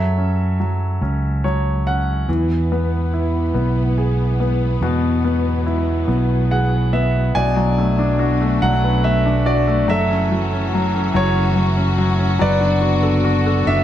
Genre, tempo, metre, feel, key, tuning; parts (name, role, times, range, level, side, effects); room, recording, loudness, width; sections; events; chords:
acoustic folk-pop ballad; 48 BPM (dotted quarters); 6/8; straight; A4 = 440 Hz
clear grand piano; melody; 0.0-13.8 s; B2 to G#5; -19 LUFS; left 1 dB
fingered electric bass; bass; 0.0-13.8 s; F#1 to F#2; -19 LUFS; right 1 dB
warm studio string section; sustained chords; 2.3-13.8 s; G#2 to F#4; -26 LUFS; left 1 dB
wet recital hall reverb, RT60 1.3 s; -16 LUFS; side -11 dB against mid
0.0-7.3 A section; 7.3-13.8 B section
grand piano fill 1.0-2.3, 6.1-7.3
0.0 F#m7; 2.3 E; 7.3 Bm7; 9.9 F#m7; 12.4 D6/F#